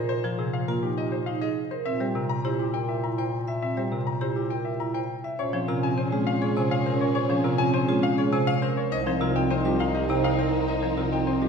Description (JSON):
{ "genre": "classical, minimalist pattern music", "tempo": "102 BPM", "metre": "3/4", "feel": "straight", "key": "Bb dorian", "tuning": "A4 = 443 Hz", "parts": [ { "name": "clear baby grand piano", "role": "melody", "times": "0.0-11.5 s", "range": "G4 to Bb5", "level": "-31 LUFS", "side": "left 8 dB", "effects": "none" }, { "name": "vibraphone with medium mallets", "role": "arpeggios", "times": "0.0-11.5 s", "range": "C4 to E5", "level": "-30 LUFS", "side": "right 6 dB", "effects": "none" }, { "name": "bright bass clarinet", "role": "bass", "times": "0.0-11.5 s", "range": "C2 to Bb2", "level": "-31 LUFS", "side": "left 2 dB", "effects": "none" }, { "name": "marimba with medium hard mallets", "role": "accompaniment", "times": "0.2-11.5 s", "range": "C3 to E4", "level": "-28 LUFS", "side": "right 1 dB", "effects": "none" }, { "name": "warm French horn", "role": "second line", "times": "5.4-11.5 s", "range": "Db4 to Eb4", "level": "-30 LUFS", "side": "right 3 dB", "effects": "none" }, { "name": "warm symphonic violin section", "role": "sustained chords", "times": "5.4-11.5 s", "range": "C4 to Ab4", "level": "-34 LUFS", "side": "left 3 dB", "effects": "none" } ], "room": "wet concert hall reverb, RT60 1.8 s", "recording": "minimal, uncompressed stereo recording", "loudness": "-23 LUFS", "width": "side -6 dB against mid", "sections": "0.0-5.4 A section; 5.4-11.5 B section", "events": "none", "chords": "0.0 F7(no3)/Bb; 1.9 C7/Bb; 5.4 Bbm7; 8.9 Cm" }